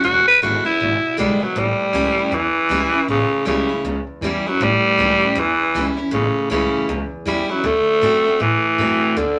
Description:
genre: rockabilly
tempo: 158 BPM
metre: 4/4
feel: swing 61% on 8ths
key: A mixolydian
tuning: A4 = 440 Hz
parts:
  - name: raspy tenor saxophone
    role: melody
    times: 0.0-9.4 s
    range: C#3 to B4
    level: -19 LUFS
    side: equal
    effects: none
  - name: picked steel-string acoustic guitar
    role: accompaniment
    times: 0.0-9.4 s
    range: E2 to F#4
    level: -26 LUFS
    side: equal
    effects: none
  - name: upright bass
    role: bass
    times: 0.0-9.3 s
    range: E1 to A2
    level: -29 LUFS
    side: equal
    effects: none
room: moderate club reverb, RT60 0.7 s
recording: none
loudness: -18 LUFS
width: mono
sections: 0.0-1.6 A section; 1.6-9.4 B section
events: tenor saxophone solo 0.0-1.6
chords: 0.0 E7; 1.6 A7; 7.6 D7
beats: | 0.05 0.43 0.81 1.19 | 1.57 1.95 2.33 2.71 | 3.08 3.46 3.85 4.22 | 4.61 4.99 5.37 5.75 | 6.12 6.50 6.88 7.26 | 7.64 8.03 8.41 8.79 | 9.17

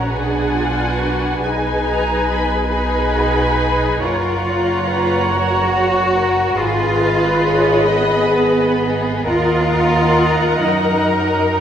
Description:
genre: classical, slow romantic movement for string orchestra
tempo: 46 BPM (dotted quarters)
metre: 6/8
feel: uneven beats, rubato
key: Eb minor from 4.0 s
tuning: A4 = 442 Hz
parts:
  - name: muted symphonic violin section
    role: melody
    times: 0.0-11.6 s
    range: F#4 to Eb5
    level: -25 LUFS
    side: left 3 dB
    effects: none
  - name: muted studio violin section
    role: second line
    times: 0.0-11.6 s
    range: Eb5 to B5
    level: -22 LUFS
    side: left 1 dB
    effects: none
  - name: muted symphonic viola section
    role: accompaniment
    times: 0.0-11.6 s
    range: E#4 to Eb5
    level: -20 LUFS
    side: left 1 dB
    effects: none
  - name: muted symphonic cello section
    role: bass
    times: 0.0-11.6 s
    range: Cb4 to Gb4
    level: -19 LUFS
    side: right 1 dB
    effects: none
  - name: muted symphonic double bass section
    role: bass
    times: 0.0-11.6 s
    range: Gb1 to Gb2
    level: -22 LUFS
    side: right 2 dB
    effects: none
room: wet recital hall reverb, RT60 1.7 s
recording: recorded in a church or concert hall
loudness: -14 LUFS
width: side -9 dB against mid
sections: 0.0-11.6 A section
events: none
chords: 0.1 G#m7b5/B; 1.4 B6; 4.0 Gb; 6.6 Abm; 9.3 Ebm; 10.6 Ebm/Gb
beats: 0.12 | 1.43 2.71 | 4.02 5.31 | 6.58 7.87 | 9.28 10.63

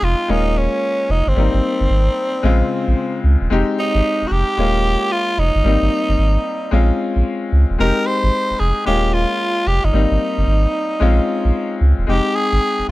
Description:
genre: R&B, new jack swing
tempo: 112 BPM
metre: 4/4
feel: swing 65% on 16ths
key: F minor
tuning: A4 = 438 Hz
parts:
  - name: raspy tenor saxophone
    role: melody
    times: 0.0-12.9 s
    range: C4 to C5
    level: -20 LUFS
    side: right 1 dB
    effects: slapback echo
  - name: bright baby grand piano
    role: accompaniment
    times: 0.0-12.9 s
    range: Db3 to G5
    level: -21 LUFS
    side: left 4 dB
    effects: none
  - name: warm sub bass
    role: bass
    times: 0.0-12.9 s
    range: Eb1 to Db2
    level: -16 LUFS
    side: equal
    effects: none
room: little or no reverb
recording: dry, close 1970s-style studio recording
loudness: -15 LUFS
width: side -18 dB against mid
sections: 0.0-12.9 A section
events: none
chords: 0.3 Eb9sus4; 1.4 Abmaj7; 2.4 Bbm9; 3.5 Fm9; 4.6 Eb9sus4; 5.6 Abmaj7; 6.7 Bbm9; 7.8 Fm9; 8.9 Eb9sus4; 9.9 Abmaj7; 11.0 Bbm9; 12.1 Fm9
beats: 0.29 0.82 | 1.36 1.90 2.43 2.97 | 3.50 4.04 4.57 5.11 | 5.64 6.18 6.72 7.25 | 7.79 8.32 8.86 9.39 | 9.93 10.47 11.00 11.54 | 12.07 12.61

